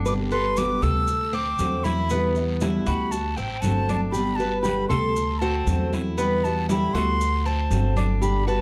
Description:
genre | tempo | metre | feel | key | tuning
latin, Cuban son and guajira | 118 BPM | 4/4 | straight | unclear | A4 = 440 Hz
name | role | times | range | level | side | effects
fingerpicked steel-string acoustic guitar | accompaniment | 0.0-8.6 s | B2 to G4 | -31 LUFS | equal | none
Cuban tres | arpeggios | 0.0-8.6 s | B3 to B4 | -32 LUFS | equal | none
upright bass | bass | 0.0-8.6 s | G1 to E2 | -28 LUFS | equal | none
silver concert flute | melody | 0.1-8.6 s | G5 to E6 | -29 LUFS | equal | none
nylon-string guitar | second line | 0.1-8.6 s | E4 to C5 | -35 LUFS | equal | none
congas | percussion | 0.1-8.6 s | none | -33 LUFS | equal | none
guiro | percussion | 0.1-8.6 s | none | -44 LUFS | equal | none
maracas | percussion | 0.1-8.6 s | none | -45 LUFS | equal | none
room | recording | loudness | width
moderate large studio reverb, RT60 1.0 s | dark, warm production | -23 LUFS | mono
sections
0.0-8.6 A section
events
none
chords
0.1 G; 1.1 D7; 2.1 Em7; 3.1 D7; 4.1 G; 5.2 D7; 6.2 Em7; 7.2 D7

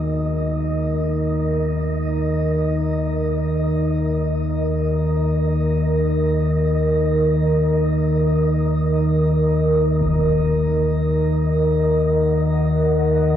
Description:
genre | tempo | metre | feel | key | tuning
dark ambient drone | free time | none | none | unclear | A4 = 440 Hz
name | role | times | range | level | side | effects
deep dark ambient pad | sustained chords | 0.0-13.4 s | Eb4 to Gb5 | -21 LUFS | equal | chorus, built-in reverb, shimmer reverb
carillon bells | arpeggios | 0.0-7.1 s | Eb3 to Eb4 | -42 LUFS | right 3 dB | none
deep rumbling drone | drone | 0.0-13.4 s | Eb2 to Eb3 | -19 LUFS | left 1 dB | built-in reverb
wind-like tuned noise texture | texture | 0.0-13.4 s | Eb5 | -32 LUFS | right 1 dB | built-in reverb, shimmer reverb
impact | percussion | 10.0-10.3 s | none | -30 LUFS | left 1 dB | low-pass filter on sfx
room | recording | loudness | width
wet echo chamber reverb, RT60 2.4 s | echo-heavy mix | -17 LUFS | side -10 dB against mid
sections
0.0-13.4 A section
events
fade-in on synth texture 0.0-13.4; fade-in on impacts and reversed cymbals 0.0-13.4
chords
0.0 Ebm

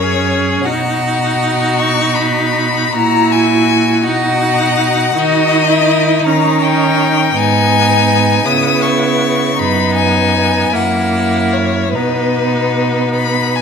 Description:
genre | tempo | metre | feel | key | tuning
classical, slow romantic movement for string quartet | 48-56 BPM (dotted quarters) | 6/8 | rubato | B major from 5.2 s | A4 = 442 Hz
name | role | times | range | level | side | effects
clear violin | melody | 0.0-13.6 s | B4 to D#6 | -15 LUFS | left 7 dB | none
clear violin | second line | 0.0-13.6 s | D#4 to G#4 | -18 LUFS | left 3 dB | none
clear viola | accompaniment | 0.0-13.6 s | A#3 to E4 | -17 LUFS | right 3 dB | none
rich cello | bass | 0.0-13.6 s | F#2 to D#3 | -18 LUFS | right 4 dB | none
room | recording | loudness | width
moderate scoring stage reverb, RT60 1.5 s | minimal, uncompressed stereo recording | -11 LUFS | side -6 dB against mid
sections
0.0-13.6 A section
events
none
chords
0.0 F#5; 0.7 B; 2.9 F#7/A#; 4.1 B; 5.2 D#m; 6.3 D#7; 7.4 G#m; 8.5 C#m7; 9.6 B/F#; 10.7 F#7; 11.9 B

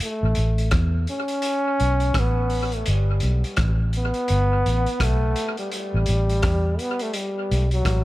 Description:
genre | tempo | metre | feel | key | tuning
roots reggae | 84 BPM | 4/4 | swing 60% on 16ths | A mixolydian | A4 = 441 Hz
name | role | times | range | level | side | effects
mellow trombone | melody | 0.0-8.0 s | F#3 to C#4 | -25 LUFS | equal | tape echo
vintage drum kit | drums | 0.0-8.0 s | hi-hat, kick drum, rim click | -27 LUFS | equal | dub echo
vintage muted fingered electric bass | bass | 0.2-8.0 s | G1 to E2 | -21 LUFS | equal | none
room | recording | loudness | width
little or no reverb | echo-heavy mix | -20 LUFS | side -17 dB against mid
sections
0.0-8.0 A section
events
none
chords
0.0 A5; 2.9 G; 5.7 A5

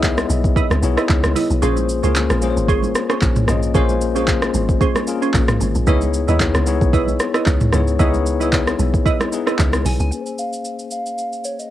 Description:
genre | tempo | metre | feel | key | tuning
amapiano | 113 BPM | 4/4 | swing 55% on 16ths | unclear | A4 = 440 Hz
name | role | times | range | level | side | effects
bell-like tine electric piano | accompaniment | 0.0-11.7 s | Bb3 to Fb5 | -22 LUFS | left 7 dB | medium stereo tremolo, low-pass filter
deep log drum bass | bass | 0.0-10.1 s | Ab1 to Eb2 | -19 LUFS | equal | none
smooth R&B drum kit | drums | 0.0-11.7 s | handclaps, hi-hat, kick drum, rim click, shaker, toms | -19 LUFS | equal | overdrive
congas | percussion | 0.0-10.0 s | none | -30 LUFS | right 8 dB | none
glassy wavetable pluck | stabs | 0.6-9.6 s | Db4 to Eb5 | -24 LUFS | right 8 dB | chorus, tape echo
soft struck synth lead | melody | 9.9-11.7 s | Db5 to Ab5 | -26 LUFS | equal | chorus, tremolo, low-pass filter, tape echo
room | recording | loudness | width
little or no reverb | home recording on cassette | -15 LUFS | side -13 dB against mid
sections
0.0-10.1 A section; 10.1-11.7 B section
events
drop 0.0-10.1; kick muted 1.6-2.7; filter sweep 10.1-11.7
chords
0.0 Dbm9; 1.6 Bbm9; 5.9 Dbm9; 10.1 Bbm9

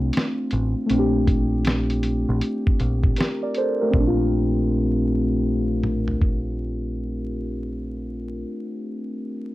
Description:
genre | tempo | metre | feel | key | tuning
lo-fi hip hop | 79 BPM | 4/4 | swing 64% on 16ths | Bb major | A4 = 440 Hz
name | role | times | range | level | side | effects
muted felt-like synth keys | accompaniment | 0.0-9.5 s | A3 to D5 | -23 LUFS | equal | chorus, cassette tape, low-pass filter
deep dub picked electric bass | bass | 0.0-8.4 s | A1 to Bb1 | -25 LUFS | equal | none
lo-fi sampler-style drum kit | drums | 0.1-6.4 s | hi-hat, kick drum, snare drum, toms | -22 LUFS | equal | none
room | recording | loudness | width
light reverb | vinyl crackle | -20 LUFS | side -17 dB against mid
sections
0.0-3.9 A section; 3.9-7.0 B section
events
filter sweep on synth keys 0.0-3.9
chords
0.0 Bbmaj9

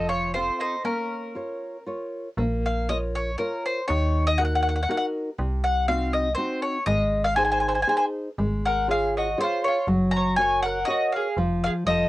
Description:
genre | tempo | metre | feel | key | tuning
italian folk, Italian serenade | 120 BPM | 3/4 | straight | Bb minor | A4 = 438 Hz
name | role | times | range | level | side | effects
bowl-back mandolin | melody | 0.0-12.1 s | Bb4 to Bb5 | -24 LUFS | left 1 dB | cassette tape
mandolin | second line | 0.0-1.8, 7.4-12.1 s | Db4 to Db5 | -30 LUFS | right 4 dB | none
nylon-string guitar | accompaniment | 0.0-12.1 s | C3 to Db5 | -28 LUFS | equal | none
metallic FM bass | bass | 0.0-12.1 s | F1 to Eb2 | -27 LUFS | equal | none
room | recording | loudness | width
moderate booth ambience, RT60 0.2 s | home recording on cassette | -22 LUFS | side -17 dB against mid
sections
0.0-2.4 A section; 2.4-12.1 A section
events
break 0.9-2.4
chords
0.0 F; 0.9 Bbm; 3.9 Ebm; 5.4 Cdim; 6.9 Ab; 8.4 Db/Ab; 9.9 Gb; 11.4 N.C.

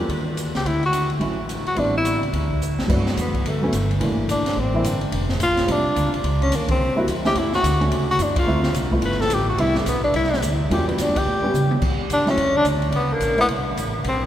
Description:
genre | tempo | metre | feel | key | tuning
jazz, small-group swing and bop | 215 BPM | 4/4 | swing 62% on 8ths | D major | A4 = 439 Hz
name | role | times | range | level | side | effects
warm baby grand piano | accompaniment | 0.0-13.5 s | E3 to G4 | -26 LUFS | equal | none
upright bass | bass | 0.0-14.3 s | F1 to C#3 | -24 LUFS | equal | none
open jazz drum kit | drums | 0.1-14.1 s | crash cymbal, hi-hat, kick drum, ride cymbal, snare drum, toms | -27 LUFS | equal | none
breathy tenor saxophone | melody | 0.6-14.2 s | G3 to B4 | -22 LUFS | left 1 dB | none
room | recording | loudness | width
wet cathedral reverb, RT60 5.6 s | recorded in a church or concert hall | -18 LUFS | side -11 dB against mid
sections
0.0-2.9 A section; 2.9-11.8 B section; 11.8-14.3 C section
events
drum fill 2.6, 11.5; band accent 6.7, 8.3; tenor saxophone solo 11.8-14.3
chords
0.1 Eb7(no3); 0.6 Dmaj9; 1.8 Am7; 2.3 D5; 2.9 Gmaj9; 4.0 C13; 5.1 F6; 6.2 C#sus2; 6.8 C7#11; 7.3 Dmaj9; 8.5 Dm7; 9.0 G13; 9.6 Cmaj7; 10.7 Em7; 11.2 A9; 11.8 Dmaj9; 12.9 C#m; 13.5 Am

